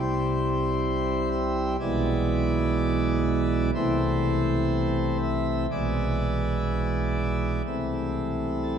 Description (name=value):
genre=classical, chorale-style piece for pipe organ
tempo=62 BPM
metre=4/4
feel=rubato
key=A minor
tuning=A4 = 437 Hz
part: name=pipe organ, plenum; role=solo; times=0.0-8.8 s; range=B1 to E5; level=-23 LUFS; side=right 1 dB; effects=none
room=wet cathedral reverb, RT60 4.4 s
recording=dark, warm production, nothing above 10.9 kHz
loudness=-23 LUFS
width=side -8 dB against mid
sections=0.0-8.8 A section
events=none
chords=0.0 C; 1.8 E7/B; 3.8 Am/C; 5.7 E7/B; 7.7 Am/C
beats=0.85 1.81 2.77 | 3.75 4.72 5.70 6.68 | 7.66 8.63